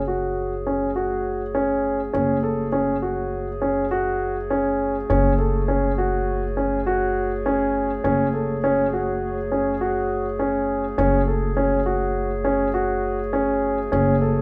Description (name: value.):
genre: contemporary instrumental, chamber music in an uneven meter.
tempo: 102 BPM.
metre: 5/4.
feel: straight.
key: F# minor.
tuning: A4 = 440 Hz.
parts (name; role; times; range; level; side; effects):
mellow woodwind section; sustained chords; 0.0-14.4 s; F#3 to G#4; -30 LUFS; equal; none.
upright bass; bass; 0.0-14.4 s; F#1; -29 LUFS; equal; none.
dark baby grand piano; arpeggios; 0.1-14.4 s; C#4 to A4; -24 LUFS; equal; none.
room: moderate recital hall reverb, RT60 1.4 s.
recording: none.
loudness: -22 LUFS.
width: mono.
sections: 0.0-14.4 A section.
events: none.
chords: 0.0 F#madd9.